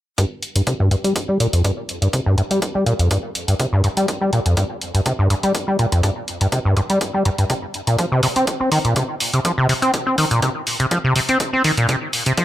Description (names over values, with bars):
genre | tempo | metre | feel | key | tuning
acid house | 123 BPM | 4/4 | swing 54% on 16ths | G minor | A4 = 441 Hz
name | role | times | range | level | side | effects
liquid acid bass | riff | 0.2-12.4 s | F2 to C4 | -17 LUFS | equal | chorus, overdrive, tape echo
electronic hi-hat | drums | 0.2-12.4 s | none | -25 LUFS | equal | none
electronic kick drum | drums | 0.2-12.4 s | none | -26 LUFS | equal | high-pass filter on kick
room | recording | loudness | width
light reverb, digital ambience | none | -16 LUFS | side -13 dB against mid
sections
0.2-12.4 A section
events
filter sweep on acid bass 0.2-12.4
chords
none